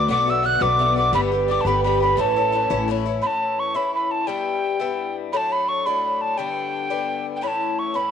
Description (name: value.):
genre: celtic folk, Celtic jig.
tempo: 114 BPM (dotted quarters).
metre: 6/8.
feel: straight.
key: A mixolydian.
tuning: A4 = 441 Hz.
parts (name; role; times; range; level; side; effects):
breathy mellow mid whistle; melody; 0.0-8.1 s; G5 to F#6; -22 LUFS; right 1 dB; none.
Celtic harp; second line; 0.0-4.4 s; A4 to F#5; -26 LUFS; right 15 dB; none.
dark fiddle; second line; 0.0-2.9 s; A4 to F#5; -30 LUFS; left 10 dB; none.
Irish bouzouki; accompaniment; 0.0-8.1 s; G2 to G4; -25 LUFS; left 10 dB; none.
upright bass; bass; 0.0-3.2 s; G1 to B1; -26 LUFS; right 1 dB; none.
room: moderate spring reverb, RT60 2.7 s.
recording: 1960s-style stereo with parts hard left and right.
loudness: -19 LUFS.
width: side -8 dB against mid.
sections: 0.0-3.2 A section; 3.2-8.1 B section.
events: none.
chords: 0.1 Bm; 1.1 G; 2.2 A; 4.3 Em; 5.3 D; 6.4 G; 7.4 A.